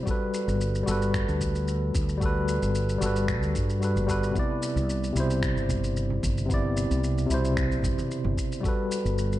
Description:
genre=sunset chillout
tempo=112 BPM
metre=4/4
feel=straight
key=C lydian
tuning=A4 = 440 Hz
part: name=barky tine electric piano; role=accompaniment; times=0.0-9.4 s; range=B2 to D5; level=-28 LUFS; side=equal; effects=auto-pan, tape echo
part: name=electronic kick drum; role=drums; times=0.1-8.8 s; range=none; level=-30 LUFS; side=equal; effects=none
part: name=electronic shaker and finger snaps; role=drums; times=0.1-9.4 s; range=none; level=-38 LUFS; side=left 1 dB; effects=none
part: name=mellow fretless electric bass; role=bass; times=0.5-9.4 s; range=G1 to G2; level=-27 LUFS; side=equal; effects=none
part: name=congas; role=percussion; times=5.7-8.3 s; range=none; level=-35 LUFS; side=right 4 dB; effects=none
room=light reverb, digital ambience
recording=dark, warm production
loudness=-24 LUFS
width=side -14 dB against mid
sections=0.0-9.4 A section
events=none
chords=0.1 Gmaj9; 4.4 Cmaj9; 8.6 Gmaj9

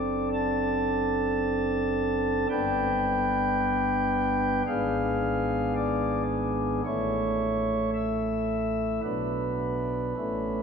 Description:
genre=classical, chorale-style piece for pipe organ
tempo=55 BPM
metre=4/4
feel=rubato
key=D major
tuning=A4 = 441 Hz
part: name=pipe organ, flutes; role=solo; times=0.0-10.6 s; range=F#1 to A5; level=-25 LUFS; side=equal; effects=none
room=wet church reverb, RT60 3.4 s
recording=minimal, uncompressed stereo recording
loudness=-25 LUFS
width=side -6 dB against mid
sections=0.0-10.6 A section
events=none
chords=0.0 D7/F#; 2.5 G; 4.7 G#dim7; 6.9 A; 9.0 Bm

